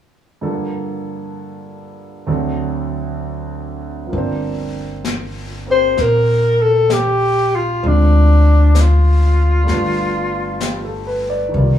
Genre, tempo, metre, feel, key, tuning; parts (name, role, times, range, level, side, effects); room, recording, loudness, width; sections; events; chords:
jazz ballad; 65 BPM; 4/4; swing 67% on 8ths; G minor; A4 = 442 Hz
clear concert grand piano; accompaniment; 0.4-11.8 s; D2 to D5; -23 LUFS; right 3 dB
upright bass; bass; 4.1-11.8 s; G1 to D2; -15 LUFS; left 1 dB
jazz brush drum kit; drums; 4.1-11.8 s; brushed snare drum, hi-hat, snare drum; -28 LUFS; left 4 dB
breathy alto saxophone; melody; 5.7-11.3 s; D4 to C5; -16 LUFS; left 1 dB
light reverb; band playing live in one room, small room ambience; -14 LUFS; side -10 dB against mid
0.4-4.1 A section; 4.1-11.8 B section
0.4 Gm9; 2.3 D7; 4.1 Gm7; 7.8 Dm7b5; 9.7 G7